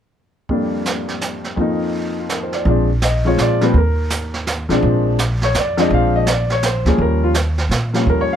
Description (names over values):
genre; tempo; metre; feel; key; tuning
jazz piano trio; 166 BPM; 3/4; swing 64% on 8ths; Bb mixolydian; A4 = 440 Hz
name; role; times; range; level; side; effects
warm upright piano; melody; 0.5-8.4 s; F2 to F5; -18 LUFS; left 1 dB; none
jazz brush drum kit; drums; 0.5-8.4 s; brushed snare drum, hi-hat, kick drum, snare drum; -23 LUFS; right 3 dB; none
upright bass; bass; 2.7-8.4 s; Bb1 to Bb2; -18 LUFS; equal; none
room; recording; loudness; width
little or no reverb; close, detailed microphones; -15 LUFS; side -9 dB against mid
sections
0.5-2.7 A section; 2.7-8.4 B section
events
none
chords
0.5 Bb6/F; 1.6 F7sus4; 2.7 Bb9; 3.7 Eb5; 4.8 Bb9; 7.0 Eb9